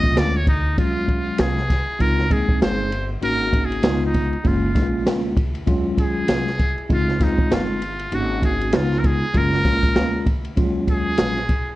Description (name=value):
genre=hip hop, jazz-hop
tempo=98 BPM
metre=4/4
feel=swing 60% on 16ths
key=Eb dorian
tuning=A4 = 441 Hz
part: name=trumpet with metal mute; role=melody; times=0.0-11.7 s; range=Eb4 to Eb5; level=-25 LUFS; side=equal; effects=slapback echo
part: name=mellow tine electric piano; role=accompaniment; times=0.0-11.4 s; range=F3 to Ab4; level=-24 LUFS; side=equal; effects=medium stereo tremolo
part: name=upright bass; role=bass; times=0.0-11.7 s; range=Gb1 to Eb2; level=-26 LUFS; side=equal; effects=none
part: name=open jazz drum kit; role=drums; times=0.0-11.7 s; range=hi-hat, kick drum, ride cymbal, snare drum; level=-21 LUFS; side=equal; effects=vintage 12-bit sampler grit
room=light reverb, small room reverb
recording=worn, warbling old tape, cassette tape, warbly pitch drift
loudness=-18 LUFS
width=side -17 dB against mid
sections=0.8-11.8 A section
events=none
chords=0.0 Gbmaj9; 0.8 Ebm11; 2.0 Dbmaj7; 3.2 Ab9sus4; 3.8 Db9; 4.4 Gbmaj9; 5.7 Ebm11; 6.9 Dbmaj7; 8.1 Ab9sus4; 8.7 Db9; 9.3 Gbmaj9; 10.6 Ebm11